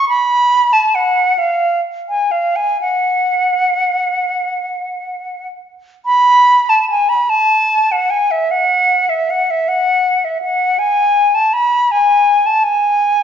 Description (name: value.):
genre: classical, free, expressive piece for unaccompanied flute.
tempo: 30-54 BPM (dotted quarters).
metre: 6/8.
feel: rubato.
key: F# minor.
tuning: A4 = 435 Hz.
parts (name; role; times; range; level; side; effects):
silver concert flute; solo; 0.0-13.2 s; E5 to B5; -12 LUFS; equal; none.
room: wet recital hall reverb, RT60 1.5 s.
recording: recorded in a church or concert hall, nothing above 7.5 kHz.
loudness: -12 LUFS.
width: side -8 dB against mid.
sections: 0.0-6.1 A section; 6.1-13.2 B section.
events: none.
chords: none.